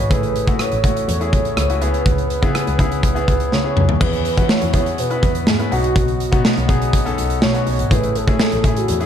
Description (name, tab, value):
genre	1980s-style pop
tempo	123 BPM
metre	4/4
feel	straight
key	unclear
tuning	A4 = 441 Hz
part	warm velvety synth lead	melody	0.0-9.1 s	F#4 to C#5	-23 LUFS	right 2 dB	chorus, tape echo
part	bright concert grand piano	accompaniment	0.0-9.1 s	A2 to B4	-23 LUFS	left 4 dB	none
part	rich double bass	bass	0.0-9.1 s	G#1 to E3	-22 LUFS	equal	none
part	big rock drum kit	drums	0.1-9.1 s	crash cymbal, hi-hat, kick drum, rim click, snare drum, toms	-18 LUFS	equal	none
room	light reverb, studio ambience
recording	dark, warm production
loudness	-15 LUFS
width	side -9 dB against mid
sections	0.0-9.1 A section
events	drum fill 3.5-4.0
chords	0.1 Amaj7; 1.8 C#m7; 4.0 E6; 5.7 Badd9; 7.9 Amaj7